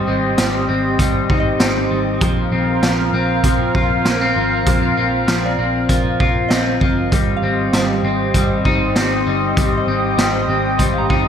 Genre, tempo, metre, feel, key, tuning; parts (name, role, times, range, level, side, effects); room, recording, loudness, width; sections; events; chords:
dream pop; 98 BPM; 4/4; straight; A4 = 440 Hz
lush unison pad; sustained chords; 0.0-11.3 s; C4 to F5; -21 LUFS; right 1 dB; chorus
electric guitar at the edge of break-up; arpeggios; 0.0-11.3 s; F3 to F4; -19 LUFS; left 2 dB; lush chorus, ping-pong delay
vintage muted picked electric bass; bass; 0.0-11.3 s; G1 to Bb1; -23 LUFS; right 1 dB
raw garage drum kit; drums; 0.4-11.2 s; hi-hat, kick drum, snare drum; -19 LUFS; right 1 dB; gated reverb
soft synth bell; texture; 1.4-11.3 s; Bb4 to Bb5; -30 LUFS; right 1 dB; chorus, ping-pong delay
moderate plate reverb, RT60 2.3 s; bright 1980s-style digital production; -14 LUFS; side -8 dB against mid
0.0-11.3 A section
0.0 Abmaj7; 2.2 Bbsus2; 7.1 Abmaj7